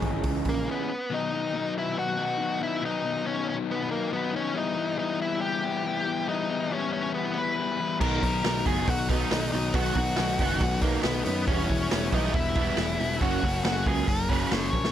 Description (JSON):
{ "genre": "indie rock", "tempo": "139 BPM", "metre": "4/4", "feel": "straight", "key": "B major", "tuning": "A4 = 440 Hz", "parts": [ { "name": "crunchy overdriven guitar", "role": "riff", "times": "0.0-0.9, 8.0-14.8 s", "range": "C#3 to E4", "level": "-33 LUFS", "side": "right 10 dB", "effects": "ensemble chorus" }, { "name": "overdriven electric guitar", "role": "riff", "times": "0.0-14.9 s", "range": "F#2 to E4", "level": "-30 LUFS", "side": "left 7 dB", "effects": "none" }, { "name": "picked electric bass", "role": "bass", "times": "0.0-0.7, 8.0-14.9 s", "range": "E1 to F#2", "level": "-31 LUFS", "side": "right 1 dB", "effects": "none" }, { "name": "vintage drum kit", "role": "drums", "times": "0.0-0.6, 8.0-14.9 s", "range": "crash cymbal, hi-hat, kick drum, snare drum", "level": "-28 LUFS", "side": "right 1 dB", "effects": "none" }, { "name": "octave-fuzz lead guitar", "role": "melody", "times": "0.5-14.9 s", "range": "A#3 to C#5", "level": "-29 LUFS", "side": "equal", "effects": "distortion" } ], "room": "studio ambience", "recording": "none", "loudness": "-24 LUFS", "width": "side -10 dB against mid", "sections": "0.0-1.1 A section; 1.1-14.9 B section", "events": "break 0.7-1.1; drum fill 14.7", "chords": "0.0 C#m; 1.1 B; 4.6 Em; 8.0 Bmaj7; 11.5 Em6; 13.2 F#" }